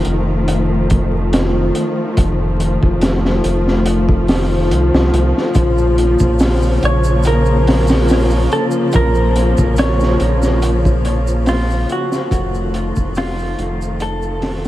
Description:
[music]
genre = trip hop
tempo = 71 BPM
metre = 4/4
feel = straight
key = Bb harmonic minor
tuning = A4 = 440 Hz
[part]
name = dark studio string section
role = sustained chords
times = 0.0-14.7 s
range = Db3 to Bb3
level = -18 LUFS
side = left 1 dB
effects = none
[part]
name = round analog bass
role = bass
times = 0.0-14.7 s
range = F1 to C2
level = -17 LUFS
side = equal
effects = none
[part]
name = crunchy breakbeat drum kit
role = drums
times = 0.0-14.7 s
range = hi-hat, kick drum, snare drum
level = -19 LUFS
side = equal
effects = none
[part]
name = tube shaker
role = percussion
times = 5.5-14.7 s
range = none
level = -39 LUFS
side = right 4 dB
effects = none
[part]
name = semi-hollow electric guitar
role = melody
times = 6.9-14.7 s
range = F4 to Db5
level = -21 LUFS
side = right 2 dB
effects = wide subtle chorus, tape echo
[sound]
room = moderate huge ambient reverb, RT60 8.0 s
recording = dreamy mix soaked in reverb, vinyl crackle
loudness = -13 LUFS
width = side -14 dB against mid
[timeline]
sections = 0.0-14.7 A section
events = fade-out 10.1-14.7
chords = 0.0 F7; 5.6 Bbm; 12.3 F7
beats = 0.49 1.33 | 2.18 3.02 3.87 4.71 | 5.56 6.40 7.25 8.09 | 8.94 9.78 10.63 11.47 | 12.32 13.16 14.01

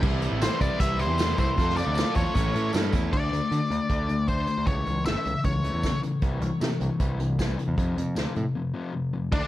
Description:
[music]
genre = indie rock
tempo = 155 BPM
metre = 4/4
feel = straight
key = D minor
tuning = A4 = 440 Hz
[part]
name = biting overdriven guitar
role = riff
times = 0.0-3.1, 9.3-9.5 s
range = G3 to A4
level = -32 LUFS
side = right 8 dB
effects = wide subtle chorus
[part]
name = fuzz guitar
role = riff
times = 0.0-9.5 s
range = F2 to F4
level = -29 LUFS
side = left 3 dB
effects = distortion
[part]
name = growling picked electric bass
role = bass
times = 0.0-9.4 s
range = G1 to D3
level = -28 LUFS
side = equal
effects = overdrive
[part]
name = unplugged drum kit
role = drums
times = 0.0-9.4 s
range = crash cymbal, hi-hat, kick drum, snare drum, tambourine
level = -28 LUFS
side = right 1 dB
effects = none
[part]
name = tambourine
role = percussion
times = 0.2-3.0 s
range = none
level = -49 LUFS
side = left 4 dB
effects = none
[part]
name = octave-fuzz lead guitar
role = melody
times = 0.4-6.0, 9.3-9.5 s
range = D4 to E5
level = -30 LUFS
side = left 2 dB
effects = distortion, analog delay
[sound]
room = little or no reverb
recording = cassette tape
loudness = -23 LUFS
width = side -14 dB against mid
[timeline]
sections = 0.0-3.1 A section; 3.1-9.3 B section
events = break 8.6-9.3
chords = 0.0 C; 1.6 F; 2.4 A; 3.1 D5; 4.7 A; 6.2 C; 7.8 F5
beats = | 0.03 0.42 0.81 1.19 | 1.58 1.97 2.35 2.74 | 3.13 3.51 3.90 4.29 | 4.68 5.07 5.45 5.84 | 6.23 6.62 7.00 7.39 | 7.78 8.17 8.55 8.94 | 9.33

